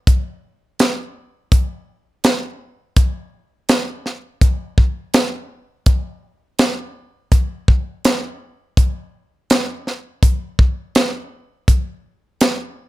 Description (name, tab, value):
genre	blues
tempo	83 BPM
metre	4/4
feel	straight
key	none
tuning	none
part	tight funk drum kit	drums	0.1-12.6 s	hi-hat, kick drum, snare drum	-14 LUFS	equal	none
room	light reverb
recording	none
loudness	-16 LUFS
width	side -17 dB against mid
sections	0.0-12.9 A section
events	none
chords	none